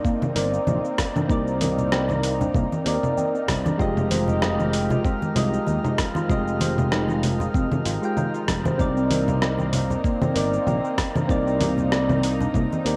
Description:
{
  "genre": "sunset chillout",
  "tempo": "96 BPM",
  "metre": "4/4",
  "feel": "swing 56% on 16ths",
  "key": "C minor",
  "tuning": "A4 = 439 Hz",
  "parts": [
    { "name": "soft electric-piano-like synth keys", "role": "accompaniment", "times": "0.0-13.0 s", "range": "Ab3 to G5", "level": "-28 LUFS", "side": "equal", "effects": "chorus, cassette tape, analog delay, shimmer reverb" },
    { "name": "lush unison pad", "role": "sustained chords", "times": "0.0-13.0 s", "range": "F3 to G4", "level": "-34 LUFS", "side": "equal", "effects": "chorus, cassette tape, shimmer reverb" },
    { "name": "soft round pluck", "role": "arpeggios", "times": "0.0-13.0 s", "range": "Bb3 to C5", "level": "-33 LUFS", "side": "equal", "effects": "chorus, cassette tape, analog delay, shimmer reverb" },
    { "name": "electronic kick drum", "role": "drums", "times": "0.0-12.7 s", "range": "none", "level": "-28 LUFS", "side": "equal", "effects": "overdrive, cassette tape" },
    { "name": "drifting glass-harmonics texture", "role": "texture", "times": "0.6-13.0 s", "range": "Bb4 to Bb5", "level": "-39 LUFS", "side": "equal", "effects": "chorus, built-in reverb, cassette tape, shimmer reverb" },
    { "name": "dusty soul sampler-style drum kit", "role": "drums", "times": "0.1-13.0 s", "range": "cabasa, congas, hi-hat, rim click", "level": "-29 LUFS", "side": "equal", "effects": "overdrive, cassette tape" },
    { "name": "congas", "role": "percussion", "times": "0.2-12.8 s", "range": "none", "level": "-32 LUFS", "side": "equal", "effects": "none" },
    { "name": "sustaining fretless electric bass", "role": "bass", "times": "0.4-13.0 s", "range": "F1 to Eb2", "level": "-29 LUFS", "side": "equal", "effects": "tube saturation" }
  ],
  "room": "wet spring reverb, RT60 2.2 s",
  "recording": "home recording on cassette",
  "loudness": "-23 LUFS",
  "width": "mono",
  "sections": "0.0-13.0 A section",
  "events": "none",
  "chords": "0.0 Cm9; 3.8 Fm9; 8.8 Cm9"
}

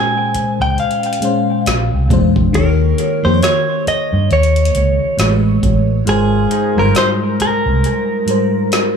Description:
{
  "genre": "contemporary R&B",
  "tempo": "68 BPM",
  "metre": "4/4",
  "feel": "swing 58% on 16ths",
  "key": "Bb dorian",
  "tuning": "A4 = 440 Hz",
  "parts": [
    { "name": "direct-recorded clean electric guitar", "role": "melody", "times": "0.0-9.0 s", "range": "Ab4 to Ab5", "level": "-18 LUFS", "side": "equal", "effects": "analog delay" },
    { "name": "FM electric piano with soft pad layer", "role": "accompaniment", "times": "0.0-9.0 s", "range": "Ab2 to Db5", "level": "-17 LUFS", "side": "left 1 dB", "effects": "chorus, analog delay" },
    { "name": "hammered dulcimer", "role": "texture", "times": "0.0-9.0 s", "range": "Eb4 to Ab4", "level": "-29 LUFS", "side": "left 2 dB", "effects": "analog delay" },
    { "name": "vintage muted fingered electric bass", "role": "bass", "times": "0.3-7.8 s", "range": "G1 to G2", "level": "-15 LUFS", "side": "equal", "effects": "none" },
    { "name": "smooth R&B drum kit", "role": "drums", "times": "0.3-9.0 s", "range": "hi-hat, kick drum, rim click, snare drum", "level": "-20 LUFS", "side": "equal", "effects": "none" }
  ],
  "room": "light reverb, digital ambience",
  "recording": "echo-heavy mix, small room ambience",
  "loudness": "-12 LUFS",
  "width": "side -6 dB against mid",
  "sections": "0.0-9.0 A section",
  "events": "kick muted 6.1-9.0",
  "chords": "0.0 Bbm9; 1.7 Bb9; 2.5 Eb7; 5.2 Amaj9; 6.1 Abmaj9"
}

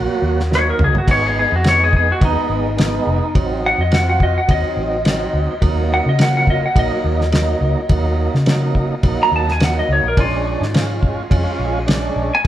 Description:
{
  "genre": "straight-eighth soul blues",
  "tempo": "106 BPM",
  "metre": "4/4",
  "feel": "swing 54% on 16ths",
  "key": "Eb minor",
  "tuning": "A4 = 441 Hz",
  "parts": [
    { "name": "tonewheel organ", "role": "accompaniment", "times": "0.0-12.5 s", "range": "Gb3 to Gb4", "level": "-22 LUFS", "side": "right 3 dB", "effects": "slow rotary speaker, overdrive" },
    { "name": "vintage muted fingered electric bass", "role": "bass", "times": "0.0-12.5 s", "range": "F1 to Db3", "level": "-19 LUFS", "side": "equal", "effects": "none" },
    { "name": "cloth-damped thuddy drum kit", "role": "drums", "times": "0.4-12.5 s", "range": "crash cymbal, kick drum, ride cymbal, snare drum, toms", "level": "-19 LUFS", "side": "equal", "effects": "none" },
    { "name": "clean lap steel guitar", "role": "melody", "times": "0.6-12.5 s", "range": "Eb4 to Bb5", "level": "-19 LUFS", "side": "left 1 dB", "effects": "none" }
  ],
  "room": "moderate stone room reverb, RT60 1.0 s",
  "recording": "band playing live in one room",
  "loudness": "-14 LUFS",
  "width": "side -12 dB against mid",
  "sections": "0.0-12.5 A section",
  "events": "electric slide guitar solo 0.0-12.5; drum fill 0.5-1.1",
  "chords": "0.0 Ebm; 1.1 Abm; 3.3 Adim7; 5.6 Ebm; 10.2 Bb7#9"
}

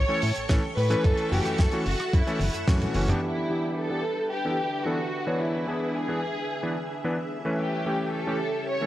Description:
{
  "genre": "nu-disco, nu disco",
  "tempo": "110 BPM",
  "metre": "4/4",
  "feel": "straight",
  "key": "E dorian",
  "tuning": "A4 = 440 Hz",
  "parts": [
    { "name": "dark symphonic violin section", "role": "melody", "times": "0.0-8.9 s", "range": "E4 to C#5", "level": "-30 LUFS", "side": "equal", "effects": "tape echo" },
    { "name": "string machine, full ensemble", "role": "sustained chords", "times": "0.0-8.9 s", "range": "C#4 to C#6", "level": "-34 LUFS", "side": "equal", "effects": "ensemble chorus, sidechain pumping" },
    { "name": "fat analog bass", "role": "bass", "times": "0.0-3.1 s", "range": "F#1 to A2", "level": "-27 LUFS", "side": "equal", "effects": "none" },
    { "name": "clear electric grand piano", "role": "accompaniment", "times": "0.1-8.9 s", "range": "E3 to C#5", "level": "-29 LUFS", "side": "equal", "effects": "sidechain pumping, low-pass filter" },
    { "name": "damped 70s drum kit", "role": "drums", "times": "0.2-3.2 s", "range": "hi-hat, rim click, snare drum, toms", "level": "-32 LUFS", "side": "equal", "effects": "low-pass filter on hats, low-pass filter on toms, low-pass filter on snare, low-pass filter on room" },
    { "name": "electronic kick drum", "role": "drums", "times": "0.5-2.8 s", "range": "none", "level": "-23 LUFS", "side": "equal", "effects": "none" }
  ],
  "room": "light reverb, small room ambience",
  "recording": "dry, gritty hardware recording, cassette tape",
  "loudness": "-24 LUFS",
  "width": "side -14 dB against mid",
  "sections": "0.0-3.2 A section; 3.2-8.9 B section",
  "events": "drum fill 2.4-3.2; band accent 2.7; filter sweep on electric grand piano 3.2-8.9; filter sweep on string machine 3.2-8.9",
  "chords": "0.0 A7; 1.0 F#m7; 3.2 Em7; 5.1 E7; 7.3 A7"
}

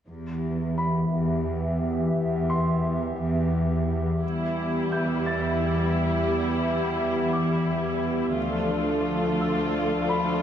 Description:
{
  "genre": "cinematic",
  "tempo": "58 BPM (dotted quarters)",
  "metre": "6/8",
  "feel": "straight",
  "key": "E phrygian",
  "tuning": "A4 = 441 Hz",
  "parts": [
    { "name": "hollow soft pad", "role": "sustained chords", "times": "0.1-10.4 s", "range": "E3 to E5", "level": "-26 LUFS", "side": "left 1 dB", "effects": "chorus, low-pass filter" },
    { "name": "warm studio cello section", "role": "bass", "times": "0.1-10.4 s", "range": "D2 to E2", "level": "-29 LUFS", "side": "right 2 dB", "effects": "none" },
    { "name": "clear baby grand piano", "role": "texture", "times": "0.8-10.4 s", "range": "B5 to A6", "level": "-35 LUFS", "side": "left 1 dB", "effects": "digital delay" },
    { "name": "rich symphonic viola section", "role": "accompaniment", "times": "4.2-10.4 s", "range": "G3 to F4", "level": "-29 LUFS", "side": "left 1 dB", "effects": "low-pass filter" }
  ],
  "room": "moderate scoring stage reverb, RT60 1.5 s",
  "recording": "none",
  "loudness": "-23 LUFS",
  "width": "side -9 dB against mid",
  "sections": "0.1-4.2 A section; 4.2-10.4 B section",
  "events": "filter sweep 0.1-4.2",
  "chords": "0.1 Em; 8.4 Dm"
}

